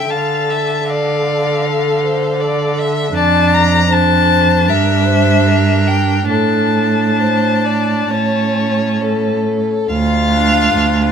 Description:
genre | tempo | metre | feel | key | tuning
classical, slow romantic movement for string quartet | 65-82 BPM | 4/4 | rubato | D minor | A4 = 440 Hz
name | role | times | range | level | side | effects
rich violin | melody | 0.0-11.1 s | F4 to Bb5 | -18 LUFS | left 7 dB | none
rich violin | second line | 0.0-11.1 s | A4 to F5 | -19 LUFS | left 4 dB | none
rich viola | accompaniment | 0.0-11.1 s | C#4 to A4 | -19 LUFS | right 4 dB | none
rich cello | bass | 0.0-11.1 s | D2 to D3 | -16 LUFS | right 4 dB | none
room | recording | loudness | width
moderate studio reverb, RT60 1.0 s | minimal, uncompressed stereo recording | -12 LUFS | side -7 dB against mid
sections
0.0-9.9 A section; 9.9-11.1 B section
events
none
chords
0.1 Dm; 3.1 Dm/F; 4.7 Em7b5/G; 6.3 D5/A; 8.1 A; 9.9 Dm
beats
| 0.09 0.89 1.66 2.40 | 3.14 3.90 4.67 5.46 | 6.29 7.19 8.11 9.00 | 9.89 10.72

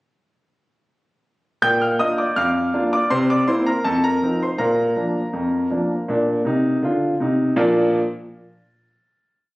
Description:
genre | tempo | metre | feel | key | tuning
ragtime piano | 81 BPM | 2/4 | straight | Bb major | A4 = 440 Hz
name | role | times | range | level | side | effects
clear concert grand piano | solo | 1.6-8.0 s | F2 to G6 | -17 LUFS | equal | none
room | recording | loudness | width
moderate small room ambience, RT60 0.5 s | recorded on a phone in the room, club reverb | -17 LUFS | side -20 dB against mid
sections
1.6-7.6 A section; 7.6-9.1 final chord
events
none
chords
1.6 Bb; 3.1 C7; 3.8 F7; 4.6 Bb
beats
| 1.62 2.36 | 3.10 3.84 | 4.59 5.34 | 6.08 6.83 | 7.58

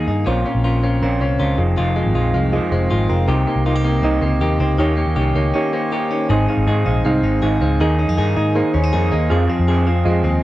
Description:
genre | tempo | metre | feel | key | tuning
indie pop | 159 BPM | 4/4 | straight | Ab major | A4 = 442 Hz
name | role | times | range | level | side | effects
electric guitar through a small old amp | accompaniment | 0.0-10.4 s | F2 to Ab4 | -24 LUFS | right 4 dB | none
direct-recorded clean electric guitar | arpeggios | 0.0-10.4 s | F2 to Ab4 | -22 LUFS | left 4 dB | slapback echo
vintage muted picked electric bass | bass | 0.0-10.4 s | F1 to Ab2 | -18 LUFS | equal | none
soft electric-piano-like synth keys | accompaniment | 0.3-10.4 s | Db4 to Ab5 | -22 LUFS | right 2 dB | chorus
room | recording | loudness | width
little or no reverb | dry, close 1970s-style studio recording | -15 LUFS | side -15 dB against mid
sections
0.3-6.3 A section; 6.3-10.4 B section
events
break 5.5-6.3; synth keys fill 8.2-9.3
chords
0.3 Bbmadd9; 1.6 Fm7; 3.3 Cm7; 4.8 Eb7; 6.3 Ab; 7.8 Ebsus4; 9.3 Fm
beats
| 0.27 0.65 1.02 1.40 | 1.78 2.16 2.53 2.91 | 3.29 3.66 4.04 4.42 | 4.79 5.17 5.55 5.92 | 6.30 6.67 7.05 7.43 | 7.80 8.18 8.55 8.93 | 9.31 9.68 10.06

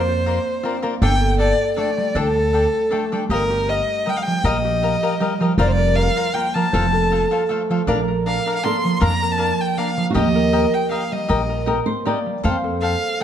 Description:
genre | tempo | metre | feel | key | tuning
mexican folk, mariachi | 158 BPM | 3/4 | straight | Bb major | A4 = 440 Hz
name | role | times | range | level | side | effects
rich violin | melody | 0.0-13.2 s | A4 to C6 | -21 LUFS | left 1 dB | none
concert harp | arpeggios | 0.0-13.2 s | F3 to F5 | -23 LUFS | right 3 dB | none
upright bass | bass | 0.0-12.9 s | F1 to F2 | -21 LUFS | equal | none
cavaquinho | accompaniment | 0.3-13.2 s | D4 to G5 | -25 LUFS | left 4 dB | none
flamenco guitar | second line | 7.9-13.2 s | Gb4 to D5 | -25 LUFS | right 2 dB | none
room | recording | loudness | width
moderate recital hall reverb, RT60 1.4 s | dark, warm production | -17 LUFS | side -9 dB against mid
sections
0.0-13.2 A section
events
none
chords
0.0 Bbadd9; 1.0 Gsus2; 3.3 Ebadd9/G; 5.6 Fsus4; 6.7 F; 7.9 Bb; 10.2 Eb; 12.4 Fadd9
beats
0.26 0.64 | 1.02 1.40 1.78 | 2.16 2.54 2.92 | 3.31 3.69 4.07 | 4.45 4.83 5.21 | 5.59 5.97 6.34 | 6.73 7.11 7.50 | 7.88 8.26 8.64 | 9.02 9.40 9.78 | 10.15 10.53 10.91 | 11.29 11.67 12.05 | 12.44 12.82 13.21

